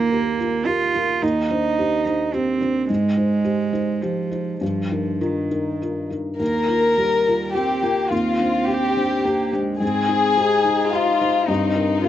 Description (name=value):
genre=neoclassical piano and strings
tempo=107 BPM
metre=3/4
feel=rubato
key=Eb major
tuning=A4 = 439 Hz
part: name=warm cello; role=second line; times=0.0-12.1 s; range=Eb3 to F4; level=-23 LUFS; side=right 5 dB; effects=none
part: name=felt-muted upright piano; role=accompaniment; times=0.0-12.1 s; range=Eb2 to C5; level=-23 LUFS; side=left 2 dB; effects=none
part: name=warm chamber violin section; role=melody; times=6.4-12.1 s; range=Eb4 to Bb4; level=-19 LUFS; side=left 3 dB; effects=none
room=light reverb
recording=recorded outdoors, with no room sound, nothing above 8.0 kHz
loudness=-18 LUFS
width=side -11 dB against mid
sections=0.0-6.4 A section; 6.4-12.1 A section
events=none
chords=0.0 Ebadd9; 1.2 Cmadd9/Eb; 2.9 Abmaj7; 4.6 Ebadd9/G; 6.4 Ebadd9; 8.1 Cmadd9/Eb; 9.8 Abmaj7; 11.5 Eb/G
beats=0.12 0.67 | 1.22 1.78 2.33 | 2.89 3.44 4.01 | 4.61 5.21 5.81 | 6.40 6.98 7.55 | 8.11 8.69 9.26 | 9.82 10.38 10.94 | 11.49 12.05